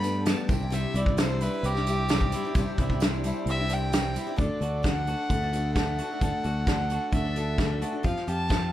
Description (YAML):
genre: folk rock and heartland rock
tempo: 131 BPM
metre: 4/4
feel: straight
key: unclear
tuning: A4 = 440 Hz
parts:
  - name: dark fiddle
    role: melody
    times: 0.0-8.7 s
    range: G4 to B5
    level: -32 LUFS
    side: equal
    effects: none
  - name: picked twelve-string acoustic guitar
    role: accompaniment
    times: 0.0-8.7 s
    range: G2 to A4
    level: -34 LUFS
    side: left 5 dB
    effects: none
  - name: tonewheel organ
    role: sustained chords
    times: 0.0-4.3 s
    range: D4 to C5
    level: -41 LUFS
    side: right 1 dB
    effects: none
  - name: electric guitar through a small old amp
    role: riff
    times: 0.0-8.7 s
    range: C3 to A4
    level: -34 LUFS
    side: right 2 dB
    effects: none
  - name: fingered electric bass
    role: bass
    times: 0.0-8.7 s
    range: C2 to G2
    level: -29 LUFS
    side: equal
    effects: none
  - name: soft brush drum kit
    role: drums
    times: 0.0-8.6 s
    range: hi-hat, kick drum, snare drum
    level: -27 LUFS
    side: equal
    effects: none
  - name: tambourine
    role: percussion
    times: 0.0-4.3 s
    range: none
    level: -46 LUFS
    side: right 13 dB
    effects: none
room: light reverb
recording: dark, warm production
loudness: -24 LUFS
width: side -13 dB against mid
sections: 0.0-4.4 A section; 4.4-8.7 B section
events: fiddle solo 0.0-4.4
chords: 0.0 Gadd9; 0.5 Cadd9; 4.4 D; 8.0 Fsus2